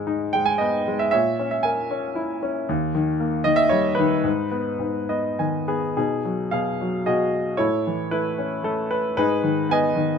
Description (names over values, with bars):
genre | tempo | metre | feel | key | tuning
classical, lyrical solo piano | 102-118 BPM | 3/4 | rubato | G# harmonic minor | A4 = 438 Hz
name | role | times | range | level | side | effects
clear baby grand piano | solo | 0.0-10.2 s | D#2 to G#5 | -20 LUFS | equal | none
room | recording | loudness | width
little or no reverb | close, detailed microphones | -20 LUFS | side -6 dB against mid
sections
0.0-6.0 A section; 6.0-10.2 B section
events
grand piano fill 4.8-6.0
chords
0.0 G#m; 1.1 A#dim; 2.7 D#; 4.3 G#m; 6.0 B6; 7.6 A; 9.2 G#m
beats
0.05 0.59 | 1.13 1.65 2.17 | 2.69 3.20 3.72 | 4.26 4.82 5.40 | 5.97 6.53 7.07 | 7.60 8.13 8.64 | 9.17 9.71